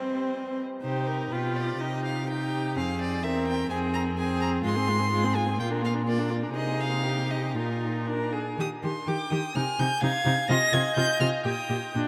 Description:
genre	quick classical-period movement for string quartet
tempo	114-129 BPM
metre	2/4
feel	rubato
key	C minor, Eb major from 4.6 s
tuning	A4 = 442 Hz
part	clear violin	melody	0.0-11.9 s	Bb4 to Bb6	-34 LUFS	equal	none
part	rich violin	second line	0.0-12.1 s	F4 to Ab5	-34 LUFS	equal	none
part	rich viola	accompaniment	0.0-12.1 s	Ab3 to G4	-33 LUFS	equal	none
part	rich cello	bass	0.0-12.0 s	E2 to C4	-32 LUFS	equal	none
room	wet cathedral reverb, RT60 6.2 s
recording	in a vast, echoing space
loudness	-27 LUFS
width	mono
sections	0.8-8.6 A section; 8.6-12.1 B section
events	none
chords	0.0 Cm; 1.3 G7/B; 1.8 Cm; 2.8 Fm; 3.2 C7/E; 3.7 Fm; 4.6 Fm/Ab; 5.6 Bb; 6.6 Ab/C; 7.6 Bbsus4; 8.1 Bb; 8.6 Eb; 9.6 Ab/C; 10.5 F5/C; 11.5 Eb

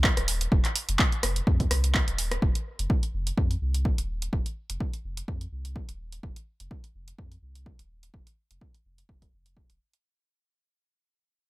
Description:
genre	acid house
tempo	126 BPM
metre	4/4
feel	swing 55% on 16ths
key	unclear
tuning	A4 = 443 Hz
part	warm sub bass	bass	0.0-9.8 s	Eb1 to F2	-29 LUFS	equal	tube saturation, sidechain pumping
part	electronic kick drum	drums	0.0-9.7 s	none	-26 LUFS	equal	none
part	punchy analog drum machine	drums	0.0-10.0 s	handclaps, hi-hat, rim click	-28 LUFS	right 1 dB	none
room	little or no reverb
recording	none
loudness	-25 LUFS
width	side -19 dB against mid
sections	0.0-10.0 A section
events	fade-out 0.0-10.0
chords	none

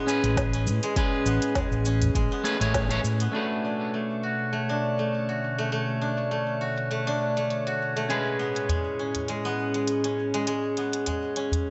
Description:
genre	organic downtempo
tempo	101 BPM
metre	4/4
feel	swing 55% on 16ths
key	B dorian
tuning	A4 = 440 Hz
part	electric guitar at the edge of break-up	accompaniment	0.0-11.7 s	A3 to C#5	-34 LUFS	equal	sidechain pumping, delay
part	warbly tape-like pad	sustained chords	0.0-11.7 s	A2 to B4	-34 LUFS	equal	chorus, built-in reverb, sidechain pumping
part	steel-string zither	arpeggios	0.0-11.7 s	G#3 to F#4	-31 LUFS	equal	low-pass filter, delay
part	drifting glass-harmonics texture	texture	0.0-11.7 s	C#4 to G#5	-41 LUFS	equal	chorus, built-in reverb
part	organic electronic drum kit	drums	0.1-11.6 s	hi-hat, shaker, snare drum	-36 LUFS	equal	low-pass filter on hats, small room ambience, low-pass filter on perc, low-pass filter on snare
part	mellow fretless electric bass	bass	0.2-3.3 s	A1 to A2	-28 LUFS	equal	sidechain pumping
part	electronic kick drum	drums	0.4-2.9 s	none	-31 LUFS	equal	overdrive, small room ambience
part	udu	percussion	1.6-2.1, 8.7-11.6 s	none	-32 LUFS	equal	none
room	moderate lush hall reverb, RT60 2.0 s, digital ambience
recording	nothing above 8.0 kHz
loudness	-27 LUFS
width	mono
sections	0.0-3.3 A section; 3.3-11.7 B section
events	band accent 2.8; filter sweep on drum 3.3-11.7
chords	0.0 Amaj9; 3.3 Bm7; 8.1 Amaj9

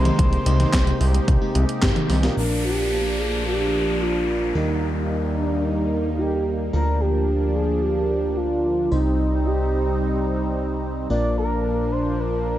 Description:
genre	synthwave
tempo	110 BPM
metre	4/4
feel	straight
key	unclear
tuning	A4 = 440 Hz
part	expressive portamento lead	melody	0.0-12.6 s	D4 to D5	-25 LUFS	right 1 dB	chorus, cassette tape, digital delay
part	soft supersaw	sustained chords	0.0-12.6 s	C3 to G4	-26 LUFS	equal	sidechain pumping
part	FM electric piano with soft pad layer	stabs	0.0-12.6 s	Bb2 to C5	-31 LUFS	left 2 dB	chorus
part	fat analog bass	bass	0.0-12.6 s	G1 to Eb2	-23 LUFS	equal	sidechain pumping
part	gated 80s digital drum machine	drums	0.1-2.5 s	crash cymbal, handclaps, hi-hat, snare drum, toms	-25 LUFS	equal	gated reverb, gated reverb snare, low-pass filter on hats, low-pass filter on toms, low-pass filter on snare, low-pass filter on cymbals, low-pass filter on room
part	electronic kick drum	drums	0.2-1.9 s	none	-21 LUFS	equal	overdrive
part	downlifter	sound effects	2.4-6.7 s	none	-31 LUFS	left 1 dB	none
room	light reverb, digital ambience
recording	dark, warm production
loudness	-19 LUFS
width	side -13 dB against mid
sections	0.0-2.4 A section; 2.4-12.6 B section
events	band accent 1.8; drum fill 2.1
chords	0.0 Abmaj7/C; 2.4 Bb; 4.6 Eb; 6.7 Bb/D; 8.9 Cm; 11.1 Bb

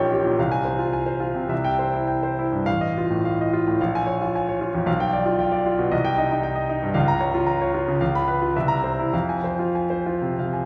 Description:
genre	classical, romantic character piece for solo piano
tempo	96-118 BPM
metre	4/4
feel	rubato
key	unclear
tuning	A4 = 440 Hz
part	bright grand piano	solo	0.0-10.7 s	A1 to Cb6	-23 LUFS	equal	none
room	wet recital hall reverb, RT60 1.8 s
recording	heard from further back in the room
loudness	-23 LUFS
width	mono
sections	0.0-10.7 A section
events	none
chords	0.4 Fm/C; 1.5 C; 2.7 F7/A; 3.8 Bbm7; 4.9 G7/B; 5.9 Cm; 7.0 Bbm/Db; 8.0 Db7; 8.5 C7; 9.1 Fm

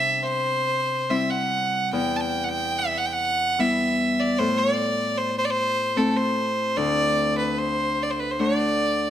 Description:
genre	celtic folk, Celtic slow air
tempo	70-77 BPM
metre	3/4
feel	rubato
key	D mixolydian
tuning	A4 = 441 Hz
part	clear fiddle	melody	0.0-9.1 s	A4 to A5	-23 LUFS	right 1 dB	slapback echo
part	Celtic harp	accompaniment	0.0-9.1 s	D2 to F#4	-26 LUFS	left 2 dB	none
room	moderate recital hall reverb, RT60 1.5 s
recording	close, detailed microphones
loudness	-21 LUFS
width	side -10 dB against mid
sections	0.0-9.1 A section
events	none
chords	0.0 C; 1.9 Em; 4.4 Am; 6.8 D

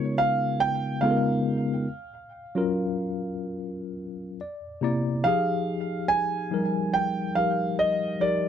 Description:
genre	R&B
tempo	71 BPM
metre	4/4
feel	swing 63% on 16ths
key	unclear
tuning	A4 = 440 Hz
part	clear concert grand piano	melody	0.0-8.5 s	Db5 to Ab5	-26 LUFS	right 2 dB	tape echo
part	mellow tine electric piano	accompaniment	0.0-8.5 s	C3 to Bb5	-26 LUFS	left 2 dB	medium stereo tremolo
room	light reverb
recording	dry, close 1970s-style studio recording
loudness	-24 LUFS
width	side -9 dB against mid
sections	0.0-5.2 A section; 5.2-8.5 B section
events	tine electric piano fill 4.0-5.2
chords	0.0 Db13; 1.9 Gbmaj7; 4.4 C9; 5.2 Fm9

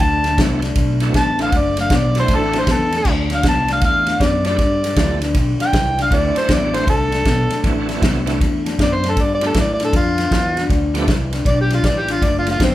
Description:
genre	electric blues shuffle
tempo	157 BPM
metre	4/4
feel	swing 64% on 8ths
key	D mixolydian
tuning	A4 = 440 Hz
part	overdriven harmonica	melody	0.0-12.7 s	C4 to A5	-19 LUFS	equal	none
part	electric guitar through a small old amp	riff	0.0-12.7 s	G2 to B3	-22 LUFS	left 3 dB	none
part	fingered electric bass	bass	0.0-12.7 s	F#1 to A2	-22 LUFS	equal	none
part	natural country drum kit	drums	0.0-12.7 s	crash cymbal, kick drum, ride cymbal, snare drum	-19 LUFS	equal	none
part	bright tonewheel organ	accompaniment	0.4-11.1 s	E3 to A4	-25 LUFS	right 5 dB	slow rotary speaker, chorus vibrato
room	moderate large studio reverb, RT60 0.8 s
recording	band playing live in one room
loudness	-14 LUFS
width	side -14 dB against mid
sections	0.0-3.1 A section; 3.1-12.7 A section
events	none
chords	0.0 D9; 4.6 G9; 6.1 D9; 9.2 G9; 12.2 D

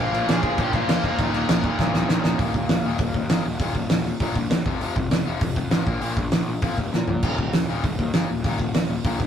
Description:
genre	punk rock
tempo	198 BPM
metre	4/4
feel	straight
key	unclear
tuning	A4 = 438 Hz
part	dark smooth lead guitar	melody	0.0-1.3 s	Eb4 to Ab5	-28 LUFS	left 1 dB	overdrive
part	cranked stack guitar	riff	0.0-2.9 s	Eb2 to Bb3	-28 LUFS	right 4 dB	overdrive
part	distorted electric guitar	riff	0.0-9.3 s	Eb2 to Bb3	-28 LUFS	left 6 dB	overdrive
part	fuzz picked electric bass	bass	0.0-9.3 s	Eb1 to Bb2	-28 LUFS	equal	overdrive
part	loose indie drum kit	drums	0.1-9.3 s	crash cymbal, hi-hat, kick drum, snare drum, toms	-22 LUFS	right 1 dB	none
room	light reverb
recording	rough rehearsal-room recording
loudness	-20 LUFS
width	side -9 dB against mid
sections	0.0-2.4 A section; 2.4-9.3 B section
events	drum fill 1.8-2.4, 6.9-7.2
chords	0.0 Bb5; 1.2 Eb5; 4.7 F5; 5.9 Bb5; 7.2 Eb5

